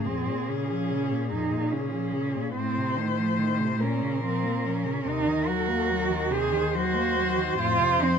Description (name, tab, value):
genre	classical, lyrical piece for cello ensemble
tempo	48 BPM (dotted quarters)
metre	6/8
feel	rubato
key	unclear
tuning	A4 = 440 Hz
part	warm cello	melody	0.0-8.2 s	Ab4 to C5	-31 LUFS	left 9 dB	none
part	rich cello	second line	0.0-8.2 s	A3 to Ab4	-27 LUFS	right 6 dB	none
part	dark cello	accompaniment	0.0-8.2 s	F2 to Bb3	-30 LUFS	left 6 dB	none
part	rich cello	bass	0.0-8.2 s	Eb2 to Bb2	-33 LUFS	right 1 dB	none
room	moderate large studio reverb, RT60 0.9 s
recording	none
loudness	-24 LUFS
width	side -7 dB against mid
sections	0.0-8.2 A section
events	none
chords	0.1 Bbm/F; 2.5 F7/A; 3.8 Bbm; 5.1 Cm7b5/Eb; 7.6 F